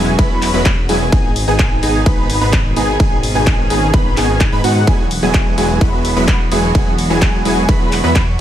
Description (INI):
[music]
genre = EDM, festival progressive house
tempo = 128 BPM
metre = 4/4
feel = straight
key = E major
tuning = A4 = 440 Hz
[part]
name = rich chamber string section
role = sustained chords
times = 0.0-8.4 s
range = B2 to G#4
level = -22 LUFS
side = right 1 dB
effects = sidechain pumping
[part]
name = wide unison lead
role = arpeggios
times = 0.0-8.2 s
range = F#5 to B5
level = -22 LUFS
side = equal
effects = ensemble chorus, sidechain pumping, digital delay
[part]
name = supersaw stab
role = riff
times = 0.0-8.2 s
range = F#3 to B4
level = -19 LUFS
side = right 1 dB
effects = sidechain pumping, digital delay
[part]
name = detuned saw bass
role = bass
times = 0.0-8.4 s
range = E1 to G#2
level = -19 LUFS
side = equal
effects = sidechain pumping
[part]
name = big-room dance drum kit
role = drums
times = 0.2-8.2 s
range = handclaps, hi-hat, ride cymbal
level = -23 LUFS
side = left 1 dB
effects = studio reverb
[part]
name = electronic kick drum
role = drums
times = 0.2-8.2 s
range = none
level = -14 LUFS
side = equal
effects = overdrive, studio reverb
[sound]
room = little or no reverb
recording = none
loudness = -12 LUFS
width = side -11 dB against mid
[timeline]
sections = 0.0-8.4 A section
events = none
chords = 0.0 Eadd9; 1.1 G#m; 4.9 Eadd9